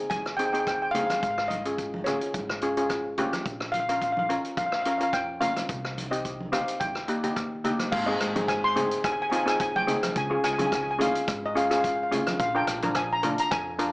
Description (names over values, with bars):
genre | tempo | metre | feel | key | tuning
calypso | 107 BPM | 4/4 | swing 54% on 16ths | Ab major | A4 = 440 Hz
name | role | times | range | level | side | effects
steel pan | melody | 0.0-13.9 s | Db5 to C6 | -27 LUFS | equal | none
steel pan | accompaniment | 0.0-13.9 s | Bb3 to Bb4 | -28 LUFS | left 1 dB | none
upright bass | bass | 0.1-13.9 s | Ab1 to F2 | -40 LUFS | equal | none
vintage drum kit | drums | 0.1-13.9 s | crash cymbal, hi-hat, kick drum, rim click | -33 LUFS | equal | none
congas | percussion | 0.1-13.4 s | none | -37 LUFS | right 1 dB | none
room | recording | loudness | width
moderate plate reverb, RT60 1.1 s | small speaker sound | -24 LUFS | side -23 dB against mid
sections
0.0-7.9 A section; 7.9-13.9 B section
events
none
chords
0.0 Ab; 1.2 Db/Ab; 3.5 Bbm; 5.7 Cm; 6.8 Eb; 7.9 Ab; 10.2 Db; 12.4 Bb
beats
0.11 0.67 | 1.22 1.78 2.34 2.90 | 3.46 4.01 4.57 5.13 | 5.69 6.25 6.81 7.37 | 7.93 8.49 9.05 9.61 | 10.16 10.72 11.28 11.84 | 12.40 12.96 13.52